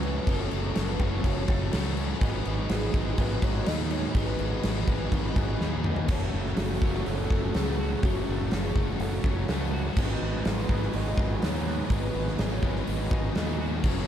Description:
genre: rock, shoegaze and dream pop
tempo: 124 BPM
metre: 4/4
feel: straight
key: unclear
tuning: A4 = 440 Hz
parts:
  - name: pure sine lead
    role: melody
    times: 0.0-13.6 s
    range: F#4 to D#5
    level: -37 LUFS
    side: left 4 dB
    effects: chorus, phaser, analog delay
  - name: hand-pumped harmonium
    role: sustained chords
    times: 0.0-14.1 s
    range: A3 to A5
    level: -41 LUFS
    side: right 3 dB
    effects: none
  - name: twangy electric guitar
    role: arpeggios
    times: 0.0-14.1 s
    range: F#3 to F#4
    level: -42 LUFS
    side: right 3 dB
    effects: none
  - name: raw garage guitar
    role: riff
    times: 0.0-14.1 s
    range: F#2 to A4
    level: -38 LUFS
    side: left 10 dB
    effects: overdrive, lush chorus
  - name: raw garage guitar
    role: riff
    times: 0.0-14.1 s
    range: F#2 to D#4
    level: -38 LUFS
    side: right 11 dB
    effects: overdrive, reverse reverb
  - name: sludgy distorted guitar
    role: riff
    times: 0.0-14.1 s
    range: F#2 to D#4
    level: -38 LUFS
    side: equal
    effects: overdrive
  - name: fuzz fingered electric bass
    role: bass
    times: 0.0-14.0 s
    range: F#1 to D#2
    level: -30 LUFS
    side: equal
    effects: overdrive
  - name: huge arena drum kit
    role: drums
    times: 0.0-14.0 s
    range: crash cymbal, hi-hat, kick drum, snare drum, toms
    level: -28 LUFS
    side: equal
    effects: none
room: small room reverb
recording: dark, warm production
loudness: -25 LUFS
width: side -10 dB against mid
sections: 0.0-6.1 A section; 6.1-14.1 B section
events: drum fill 5.6-6.1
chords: 0.0 F#m; 2.2 G#m7; 6.1 F#m; 10.0 G#m7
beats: | 0.28 0.76 1.25 1.73 | 2.22 2.70 3.19 3.67 | 4.16 4.64 5.13 5.61 | 6.10 6.58 7.07 7.55 | 8.03 8.52 9.00 9.49 | 9.97 10.46 10.94 11.42 | 11.91 12.39 12.87 13.36 | 13.84

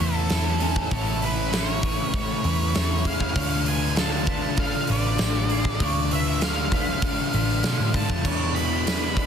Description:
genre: rock, shoegaze and dream pop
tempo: 98 BPM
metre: 4/4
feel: straight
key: A major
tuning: A4 = 440 Hz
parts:
  - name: octave-fuzz lead guitar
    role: melody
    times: 0.0-9.3 s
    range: A4 to B5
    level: -30 LUFS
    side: equal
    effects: distortion, digital delay
  - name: electric guitar through a small old amp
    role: arpeggios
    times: 0.0-9.3 s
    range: G#4 to C#6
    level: -35 LUFS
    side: right 2 dB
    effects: analog chorus, digital delay
  - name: crunchy overdriven guitar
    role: riff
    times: 0.0-9.3 s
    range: A2 to G#4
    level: -29 LUFS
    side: left 13 dB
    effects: lush chorus
  - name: raw garage guitar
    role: riff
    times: 0.0-9.3 s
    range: E2 to F4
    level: -31 LUFS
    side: right 14 dB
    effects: overdrive, reverse reverb
  - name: vintage muted picked electric bass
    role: bass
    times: 0.0-9.3 s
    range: A1 to B2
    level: -26 LUFS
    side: equal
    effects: none
  - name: huge arena drum kit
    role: drums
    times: 0.3-9.3 s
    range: crash cymbal, hi-hat, kick drum, snare drum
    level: -26 LUFS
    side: right 1 dB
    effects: none
  - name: tambourine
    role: percussion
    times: 0.3-9.0 s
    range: none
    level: -37 LUFS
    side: right 10 dB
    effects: none
room: little or no reverb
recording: dense, heavily limited modern master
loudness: -21 LUFS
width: side -8 dB against mid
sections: 0.0-9.3 A section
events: none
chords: 0.0 Amaj7; 3.4 Dm6; 8.3 E5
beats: 0.30 | 0.92 1.53 2.14 2.75 | 3.36 3.97 4.58 5.20 | 5.81 6.42 7.03 7.64 | 8.26 8.87

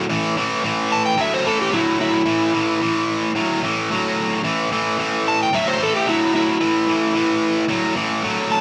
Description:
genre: rock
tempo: 110 BPM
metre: 4/4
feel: straight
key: unclear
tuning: A4 = 440 Hz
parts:
  - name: tight distorted guitar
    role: riff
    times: 0.0-8.6 s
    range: A2 to F#3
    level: -22 LUFS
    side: equal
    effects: distortion
  - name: overdriven slide guitar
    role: melody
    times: 0.9-8.6 s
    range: E4 to A5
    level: -22 LUFS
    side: equal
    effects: none
room: moderate studio reverb, RT60 0.7 s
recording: band playing live in one room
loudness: -19 LUFS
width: mono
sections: 0.6-8.6 A section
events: electric slide guitar solo 0.0-8.6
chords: 0.0 A5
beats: 0.09 | 0.63 1.18 1.72 2.27 | 2.81 3.35 3.90 4.44 | 4.98 5.53 6.07 6.61 | 7.15 7.70 8.24

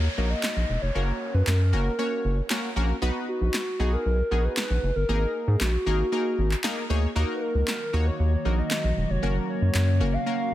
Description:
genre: dance-pop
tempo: 116 BPM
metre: 4/4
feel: straight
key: Eb minor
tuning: A4 = 440 Hz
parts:
  - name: hollow clarinet-like synth lead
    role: melody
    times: 0.0-10.5 s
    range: F#4 to F5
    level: -30 LUFS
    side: equal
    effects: chorus, digital delay
  - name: funky polysynth comp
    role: accompaniment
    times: 0.0-10.5 s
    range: Bb3 to Db5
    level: -31 LUFS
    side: equal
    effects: chorus
  - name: round analog bass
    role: bass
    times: 0.0-10.2 s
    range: Fb1 to Ab2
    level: -23 LUFS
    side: equal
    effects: none
  - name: downlifter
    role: sound effects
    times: 0.0-3.0 s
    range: none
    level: -39 LUFS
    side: equal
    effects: none
  - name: electronic handclaps and snare drum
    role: drums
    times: 0.4-9.9 s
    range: none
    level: -31 LUFS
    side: equal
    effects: none
  - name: glassy FM pad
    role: sustained chords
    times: 7.8-10.5 s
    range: Db3 to Gb4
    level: -33 LUFS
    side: equal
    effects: ensemble chorus, built-in reverb
room: digital ambience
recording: none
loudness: -23 LUFS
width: side -14 dB against mid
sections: 0.0-10.5 A section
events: none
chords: 0.0 Ebm; 1.0 Gb; 3.0 B; 5.1 Absus2; 7.2 Ebm; 9.2 Gb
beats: 0.43 | 0.95 1.47 1.99 2.50 | 3.02 3.54 4.06 4.57 | 5.09 5.61 6.12 6.64 | 7.16 7.68 8.19 8.71 | 9.23 9.74 10.26

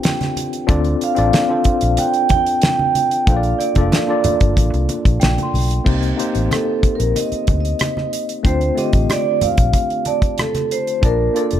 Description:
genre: lush 1970s-style soul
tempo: 93 BPM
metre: 4/4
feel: straight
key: C dorian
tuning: A4 = 438 Hz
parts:
  - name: tine electric piano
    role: accompaniment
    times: 0.0-11.6 s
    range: D3 to A5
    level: -22 LUFS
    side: left 3 dB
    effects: overdrive, fast stereo tremolo
  - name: damped 70s drum kit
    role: drums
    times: 0.0-11.6 s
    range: crash cymbal, hi-hat, kick drum, rim click, snare drum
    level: -18 LUFS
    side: equal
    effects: none
  - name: celesta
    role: texture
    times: 0.0-11.3 s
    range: D5 to C6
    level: -31 LUFS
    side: equal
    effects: none
  - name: congas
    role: percussion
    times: 0.1-11.2 s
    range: none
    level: -26 LUFS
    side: right 2 dB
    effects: none
  - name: vintage muted fingered electric bass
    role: bass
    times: 0.7-11.6 s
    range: F1 to D2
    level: -19 LUFS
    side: equal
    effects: none
  - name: vibraphone with medium mallets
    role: melody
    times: 1.0-11.6 s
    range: A4 to G5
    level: -19 LUFS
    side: moving between left 2 dB and right 9 dB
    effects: auto-pan, tape echo
room: studio ambience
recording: none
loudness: -15 LUFS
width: side -10 dB against mid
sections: 0.0-5.9 A section; 5.9-11.6 B section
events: vibraphone solo 5.9-11.6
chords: 0.0 G7sus4; 0.7 Dm7; 3.3 Bbmaj7; 5.9 Cm7; 8.4 Dm7; 11.0 Bbmaj7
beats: 0.04 | 0.69 1.34 1.98 2.63 | 3.27 3.92 4.57 5.21 | 5.86 6.50 7.15 7.80 | 8.45 9.09 9.74 10.38 | 11.03

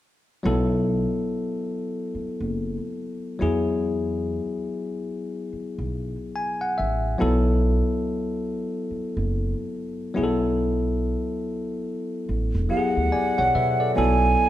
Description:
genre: R&B, neo-soul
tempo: 71 BPM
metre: 4/4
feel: swing 62% on 16ths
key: unclear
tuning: A4 = 440 Hz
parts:
  - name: bell-like tine electric piano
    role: accompaniment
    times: 0.4-14.5 s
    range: F#3 to G#5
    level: -25 LUFS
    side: left 2 dB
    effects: none
  - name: upright bass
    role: bass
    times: 0.5-14.3 s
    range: E1 to B2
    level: -26 LUFS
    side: right 1 dB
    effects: none
  - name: mellow hollow jazz flute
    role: melody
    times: 12.7-14.5 s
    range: F#5 to G#5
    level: -22 LUFS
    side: right 2 dB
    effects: none
room: moderate recital hall reverb, RT60 1.5 s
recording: recorded in a church or concert hall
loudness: -23 LUFS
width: side -13 dB against mid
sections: 0.4-13.9 A section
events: tine electric piano fill 5.9-7.2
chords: 0.4 B5; 3.4 Eadd9; 7.2 B5; 10.1 Bm7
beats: | 0.43 1.27 2.12 2.96 | 3.81 4.65 5.50 6.34 | 7.19 8.03 8.88 9.72 | 10.57 11.41 12.26 13.10 | 13.95

